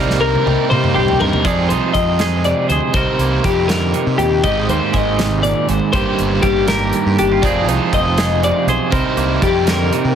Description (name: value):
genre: math rock and midwest emo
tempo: 80 BPM (dotted quarters)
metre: 6/8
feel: straight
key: C minor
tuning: A4 = 439 Hz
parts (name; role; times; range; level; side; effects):
- twangy electric guitar; accompaniment; 0.0-10.2 s; G2 to C5; -20 LUFS; right 10 dB; tremolo
- twelve-string electric guitar; arpeggios; 0.0-10.2 s; G4 to Eb5; -18 LUFS; left 6 dB; spring reverb
- biting overdriven guitar; riff; 0.0-10.2 s; F2 to G4; -21 LUFS; right 3 dB; none
- fuzz fingered electric bass; bass; 0.0-10.1 s; F1 to C3; -20 LUFS; equal; overdrive
- modern studio drum kit; drums; 0.1-10.0 s; hi-hat, kick drum, snare drum, toms; -21 LUFS; equal; none
room: light reverb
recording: heavily compressed radio sound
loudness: -13 LUFS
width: side -8 dB against mid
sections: 0.0-1.4 A section; 1.4-10.2 B section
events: drum fill 0.0-1.4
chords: 0.0 Cm11; 1.4 Fm7; 2.9 Cm9; 4.4 Abmaj9; 5.9 Eb/G; 7.4 Fm7; 8.9 Cm9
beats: 0.70 | 1.45 2.20 | 2.95 3.69 | 4.44 5.19 | 5.94 6.69 | 7.44 8.18 | 8.93 9.68